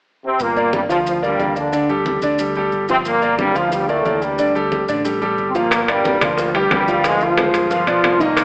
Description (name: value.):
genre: latin, salsa.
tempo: 181 BPM.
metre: 4/4.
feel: straight.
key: G minor.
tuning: A4 = 440 Hz.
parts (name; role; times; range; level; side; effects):
brilliant trombone section; melody; 0.2-8.4 s; G2 to F4; -18 LUFS; equal; none.
fingered electric bass; bass; 0.4-8.4 s; G1 to D2; -30 LUFS; equal; none.
congas; percussion; 0.4-8.4 s; none; -29 LUFS; equal; none.
maracas; percussion; 0.4-8.4 s; none; -36 LUFS; equal; none.
bright concert grand piano; accompaniment; 0.6-8.4 s; D3 to G5; -19 LUFS; equal; none.
bongos; percussion; 5.7-8.4 s; none; -24 LUFS; equal; none.
timbales; percussion; 5.7-8.4 s; none; -21 LUFS; equal; none.
room: wet recital hall reverb, RT60 1.6 s.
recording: AM radio sound.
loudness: -15 LUFS.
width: side -27 dB against mid.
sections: 0.4-5.7 A section; 5.7-8.4 B section.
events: none.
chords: 0.4 Gm7; 1.7 Dsus4; 3.1 Gm7; 7.0 Dm7b5; 7.7 G7.